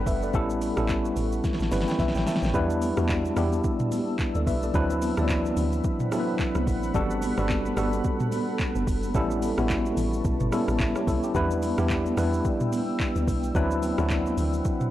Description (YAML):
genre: amapiano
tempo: 109 BPM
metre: 4/4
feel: swing 58% on 16ths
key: E minor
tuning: A4 = 442 Hz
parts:
  - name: tine electric piano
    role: accompaniment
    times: 0.0-14.9 s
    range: E3 to B5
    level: -26 LUFS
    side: left 1 dB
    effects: overdrive, fast stereo tremolo
  - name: deep dark ambient pad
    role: sustained chords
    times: 0.0-14.9 s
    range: C4 to E6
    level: -36 LUFS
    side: equal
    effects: chorus, built-in reverb
  - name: deep log drum bass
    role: bass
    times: 0.0-14.6 s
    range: F#1 to E2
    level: -28 LUFS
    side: equal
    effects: none
  - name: smooth R&B drum kit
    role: drums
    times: 0.1-14.9 s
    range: handclaps, hi-hat, kick drum, rim click, shaker, snare drum, toms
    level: -29 LUFS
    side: equal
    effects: overdrive, vintage 12-bit sampler grit
  - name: congas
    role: percussion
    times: 2.5-14.5 s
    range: none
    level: -34 LUFS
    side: right 3 dB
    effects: none
room: digital ambience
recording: dry, gritty hardware recording, transformer saturation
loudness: -23 LUFS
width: side -13 dB against mid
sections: 0.0-14.9 A section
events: drum fill 1.4-2.5; tine electric piano fill 1.4-2.5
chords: 0.3 A9; 2.5 Em7; 4.7 D13; 6.9 Gmaj9; 9.1 A9; 11.3 Em7; 13.6 D13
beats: | 0.34 0.89 1.44 1.99 | 2.54 3.09 3.64 4.19 | 4.74 5.29 5.84 6.39 | 6.95 7.50 8.05 8.60 | 9.15 9.70 10.25 10.80 | 11.35 11.90 12.45 13.00 | 13.55 14.10 14.65